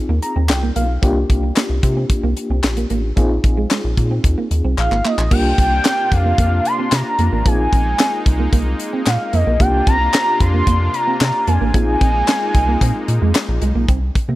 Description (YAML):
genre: early-eighties boogie funk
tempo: 112 BPM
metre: 4/4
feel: straight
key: C minor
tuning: A4 = 440 Hz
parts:
  - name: FM electric piano with tremolo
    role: accompaniment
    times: 0.0-13.9 s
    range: Bb3 to Bb5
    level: -24 LUFS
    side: left 2 dB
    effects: none
  - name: semi-hollow electric guitar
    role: riff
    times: 0.1-14.4 s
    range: Ab3 to C4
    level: -25 LUFS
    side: right 5 dB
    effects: ensemble chorus
  - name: rubbery square bass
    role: bass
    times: 0.1-14.4 s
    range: Ab1 to C3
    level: -18 LUFS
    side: equal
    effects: none
  - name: tight funk drum kit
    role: drums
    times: 0.2-14.3 s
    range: crash cymbal, handclaps, hi-hat, kick drum, snare drum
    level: -18 LUFS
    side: equal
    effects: none
  - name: group handclap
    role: percussion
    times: 0.5-13.5 s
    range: none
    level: -27 LUFS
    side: left 8 dB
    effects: none
  - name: gliding portamento lead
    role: melody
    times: 4.8-13.6 s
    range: Eb5 to C6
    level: -19 LUFS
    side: equal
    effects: chorus
  - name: brassy analog pad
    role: sustained chords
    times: 5.3-13.9 s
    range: C3 to F4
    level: -27 LUFS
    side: left 2 dB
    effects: chorus
room: studio reverb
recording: none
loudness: -14 LUFS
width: side -16 dB against mid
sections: 0.0-5.3 A section; 5.3-13.9 B section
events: FM electric piano fill 0.0-1.0; drum fill 4.8-5.3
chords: 0.0 Bb9sus4; 1.0 C9sus4; 3.2 Bb9sus4; 5.3 C9sus4; 7.5 Bb9sus4; 9.6 C9sus4; 11.7 Bb9sus4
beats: 0.49 | 1.03 1.56 2.10 2.64 | 3.17 3.71 4.24 4.78 | 5.32 5.85 6.39 6.92 | 7.46 7.99 8.53 9.06 | 9.60 10.14 10.67 11.21 | 11.74 12.28 12.81 13.35 | 13.89